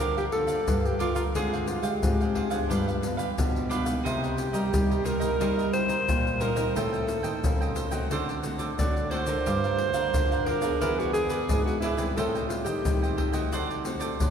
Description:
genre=samba and choro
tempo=89 BPM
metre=4/4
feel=straight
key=G minor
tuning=A4 = 444 Hz
part: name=breathy alto saxophone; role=melody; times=0.0-13.5 s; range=E4 to D5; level=-29 LUFS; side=right 1 dB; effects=none
part: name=cavaquinho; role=accompaniment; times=0.0-14.3 s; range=D4 to G5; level=-34 LUFS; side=right 5 dB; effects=none
part: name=nylon-string guitar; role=accompaniment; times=0.0-14.3 s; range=G2 to Bb4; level=-34 LUFS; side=left 2 dB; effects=none
part: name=nylon-string guitar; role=bass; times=0.0-14.3 s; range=E2 to Ab3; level=-31 LUFS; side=equal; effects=none
part: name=tube shaker, surdo and pandeiro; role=percussion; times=0.0-14.3 s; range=none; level=-30 LUFS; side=left 1 dB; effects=none
room=wet cathedral reverb, RT60 5.0 s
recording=recorded in a church or concert hall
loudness=-24 LUFS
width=side -8 dB against mid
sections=0.0-14.3 A section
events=none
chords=0.0 Gm7; 1.4 Dm7b5; 2.7 G7; 4.1 Cm7; 6.8 Am7b5; 8.1 D7; 9.5 Gm7; 10.8 E7; 12.2 Am7b5; 13.5 D7

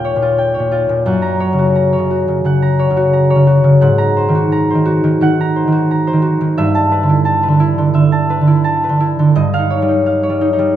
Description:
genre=classical, solo harp piece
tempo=86 BPM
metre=4/4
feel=rubato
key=unclear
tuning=A4 = 443 Hz
part: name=concert harp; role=solo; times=0.0-10.8 s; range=Eb2 to Bb5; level=-11 LUFS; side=equal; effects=none
room=moderate recital hall reverb, RT60 1.5 s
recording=none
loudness=-11 LUFS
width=side -11 dB against mid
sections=0.0-10.8 A section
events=none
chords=0.0 Eb9; 1.1 Gb; 3.8 Ab9; 6.6 G69; 9.4 Eb9/G

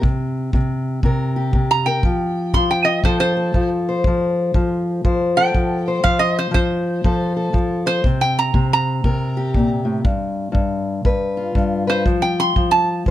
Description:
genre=acoustic country blues, solo or duo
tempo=120 BPM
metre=4/4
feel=swing 63% on 8ths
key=unclear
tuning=A4 = 439 Hz
part: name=fingerpicked steel-string acoustic guitar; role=accompaniment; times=0.0-13.1 s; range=G2 to C5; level=-19 LUFS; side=left 2 dB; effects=none
part: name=kick drum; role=drums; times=0.0-13.1 s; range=none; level=-20 LUFS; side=equal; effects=none
part: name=lap resonator guitar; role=melody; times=1.7-13.1 s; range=C5 to C6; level=-19 LUFS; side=right 2 dB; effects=none
room=light reverb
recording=close, detailed microphones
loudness=-16 LUFS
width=side -13 dB against mid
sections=0.0-13.1 A section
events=resonator guitar played with a steel bar solo 0.0-13.1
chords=0.0 C5; 2.0 F; 8.0 C5; 10.1 G7; 12.1 F

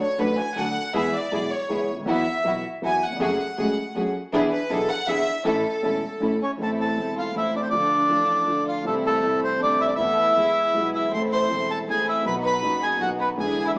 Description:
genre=tango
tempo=159 BPM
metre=3/4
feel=rubato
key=A major, A harmonic minor from 6.6 s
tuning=A4 = 440 Hz
part: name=warm chamber violin section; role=second line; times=0.0-13.8 s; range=A3 to G#5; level=-27 LUFS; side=equal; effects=none
part: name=warm concert grand piano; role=accompaniment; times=0.2-13.8 s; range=E1 to A4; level=-26 LUFS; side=equal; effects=none
part: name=warm studio string section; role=stabs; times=0.2-13.8 s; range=A3 to A4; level=-29 LUFS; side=equal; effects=none
part: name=upright bass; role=bass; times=0.2-13.8 s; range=E1 to E2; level=-42 LUFS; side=equal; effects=none
part: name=bandoneon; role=melody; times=6.4-13.7 s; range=A4 to C6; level=-22 LUFS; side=equal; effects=none
room=wet stone room reverb, RT60 1.0 s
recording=band playing live in one room, small speaker sound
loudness=-20 LUFS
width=side -35 dB against mid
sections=0.0-6.6 A section; 6.6-13.8 B section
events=violin section solo 0.0-6.6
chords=0.0 D; 0.9 E; 2.1 Esus2; 3.2 F#madd9; 4.3 E7; 5.5 A; 6.6 Am; 7.7 Dm; 8.9 Am/C; 10.0 Esus4; 10.4 E; 11.1 Am; 12.3 B

